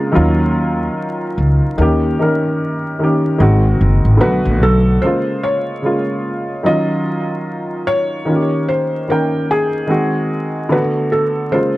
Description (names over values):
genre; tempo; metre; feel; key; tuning
lo-fi hip hop; 74 BPM; 4/4; swing 61% on 16ths; unclear; A4 = 442 Hz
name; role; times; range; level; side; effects
felt-muted upright piano; melody; 0.0-11.8 s; Ab4 to Eb5; -20 LUFS; left 1 dB; low-pass filter, tape echo
dark upright piano; accompaniment; 0.0-11.8 s; C3 to G5; -16 LUFS; equal; low-pass filter
upright bass; bass; 0.2-5.0 s; Gb1 to Eb2; -13 LUFS; equal; none
room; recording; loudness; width
light reverb, studio reverb; vinyl crackle; -14 LUFS; side -17 dB against mid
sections
0.0-5.0 A section; 5.0-11.8 B section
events
none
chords
0.2 Ebm9; 1.8 Eb7; 3.4 Ab7; 4.2 Bm7; 5.0 Bbm7; 6.6 Ebm9; 8.3 Eb7; 9.9 Ab7; 10.7 Bm7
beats
0.15 0.96 | 1.78 2.59 3.40 4.21 | 5.02 5.83 6.64 7.45 | 8.26 9.07 9.88 10.70 | 11.51